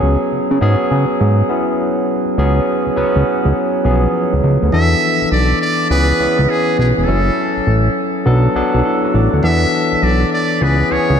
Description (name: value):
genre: R&B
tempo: 102 BPM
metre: 4/4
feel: swing 64% on 16ths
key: unclear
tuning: A4 = 440 Hz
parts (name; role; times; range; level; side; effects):
- barky tine electric piano; accompaniment; 0.0-11.2 s; E3 to F#5; -16 LUFS; left 1 dB; none
- fat analog bass; bass; 0.0-11.2 s; E1 to C#3; -14 LUFS; equal; none
- trumpet with metal mute; melody; 4.7-11.2 s; G#4 to E5; -18 LUFS; right 1 dB; diffuse ambient delay
room: wet cathedral reverb, RT60 5.7 s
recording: dreamy mix soaked in reverb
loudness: -12 LUFS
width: side -8 dB against mid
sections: 0.0-4.7 A section; 4.7-11.2 B section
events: none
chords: 0.0 C#7sus4; 4.7 E7sus4; 5.9 C#m7; 7.1 F#m7; 8.3 Bm7; 9.4 E7sus4; 10.6 C#m7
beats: | 0.02 0.61 1.20 1.79 | 2.38 2.96 3.55 4.14 | 4.73 5.32 5.91 6.50 | 7.08 7.67 8.26 8.85 | 9.44 10.02 10.61